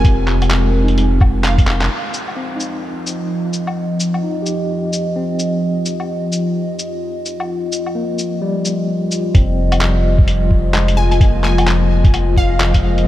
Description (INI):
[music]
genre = future garage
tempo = 129 BPM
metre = 4/4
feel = swing 61% on 16ths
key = F minor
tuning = A4 = 440 Hz
[part]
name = overdriven tine electric piano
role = accompaniment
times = 0.0-13.1 s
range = F3 to G4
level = -24 LUFS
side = left 1 dB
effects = fast tremolo, sidechain pumping, analog delay
[part]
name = dark analog pad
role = sustained chords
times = 0.0-13.1 s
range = F3 to Eb5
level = -20 LUFS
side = equal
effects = chorus, phaser, sidechain pumping
[part]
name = soft dub sub bass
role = bass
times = 0.0-1.9, 9.3-13.1 s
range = F1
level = -16 LUFS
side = equal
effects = sidechain pumping
[part]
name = electronic kick drum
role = drums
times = 0.0-1.7, 9.3-12.8 s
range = none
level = -12 LUFS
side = equal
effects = none
[part]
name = lo-fi sampler-style drum kit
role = drums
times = 0.0-13.1 s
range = cabasa, handclaps, hi-hat, woodblock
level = -23 LUFS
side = left 1 dB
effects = none
[part]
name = glassy wavetable pluck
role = melody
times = 1.4-1.9, 11.0-13.0 s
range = F5 to Ab5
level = -26 LUFS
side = equal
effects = chorus, diffuse ambient delay
[sound]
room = moderate cathedral reverb, RT60 6.2 s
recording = dreamy mix soaked in reverb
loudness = -14 LUFS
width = side -14 dB against mid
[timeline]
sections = 0.0-1.9 A section; 1.9-9.3 B section; 9.3-13.1 C section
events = drum fill 1.7; band accent 1.8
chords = 0.0 Abadd9/F; 1.9 F5; 9.3 Fm7